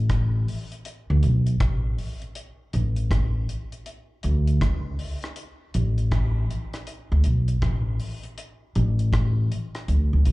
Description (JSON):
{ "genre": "roots reggae", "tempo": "80 BPM", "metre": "4/4", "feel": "swing 64% on 16ths", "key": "unclear", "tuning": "A4 = 441 Hz", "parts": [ { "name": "upright bass", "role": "bass", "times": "0.0-10.3 s", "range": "A1 to D2", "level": "-21 LUFS", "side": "equal", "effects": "none" }, { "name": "deep reggae drum kit", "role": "drums", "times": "0.1-10.3 s", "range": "hi-hat, kick drum, rim click", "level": "-29 LUFS", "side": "equal", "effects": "none" } ], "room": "little or no reverb", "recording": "live gig heard through the venue's PA, club reverb, nothing above 10.7 kHz", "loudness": "-21 LUFS", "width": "side -20 dB against mid", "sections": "0.0-10.3 A section", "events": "none", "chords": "none", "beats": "0.10 0.85 1.60 | 2.36 3.11 3.86 4.61 | 5.37 6.12 6.87 7.62 | 8.37 9.13 9.88" }